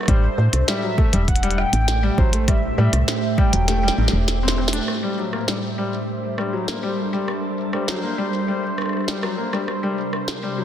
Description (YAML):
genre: IDM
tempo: 100 BPM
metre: 4/4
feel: straight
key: G melodic minor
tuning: A4 = 439 Hz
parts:
  - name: glassy FM pad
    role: sustained chords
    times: 0.0-10.6 s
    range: A2 to E5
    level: -26 LUFS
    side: right 2 dB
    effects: ensemble chorus, built-in reverb
  - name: glitchy drum kit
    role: drums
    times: 0.0-10.4 s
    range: hi-hat, rim click, snare drum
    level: -26 LUFS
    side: equal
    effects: soft clipping on snare
  - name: warbly nostalgic lead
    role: melody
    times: 0.1-4.6 s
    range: C5 to G5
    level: -27 LUFS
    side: right 1 dB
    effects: tremolo, lush chorus, digital delay
  - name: felt-muted upright piano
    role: arpeggios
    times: 0.1-10.6 s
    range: G2 to D4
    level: -26 LUFS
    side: left 4 dB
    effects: low-pass filter, digital delay
  - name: woody FM bass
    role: bass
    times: 0.1-4.8 s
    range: E1 to A2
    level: -20 LUFS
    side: equal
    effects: none
  - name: electronic kick drum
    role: drums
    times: 0.1-3.5 s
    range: none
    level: -19 LUFS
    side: equal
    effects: none
  - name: bubbling stepped-filter texture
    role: texture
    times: 4.9-10.6 s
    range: C5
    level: -31 LUFS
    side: equal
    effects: chorus, built-in reverb, sidechain pumping
room: moderate lush hall reverb, RT60 1.9 s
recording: dense, heavily limited modern master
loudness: -18 LUFS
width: side -10 dB against mid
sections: 0.0-4.9 A section; 4.9-10.6 B section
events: kick drops out 3.7-4.9; drum fill 3.7-4.9; band accent 4.7-5.0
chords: 0.1 Am7; 4.9 Gm6; 9.7 C7(no3)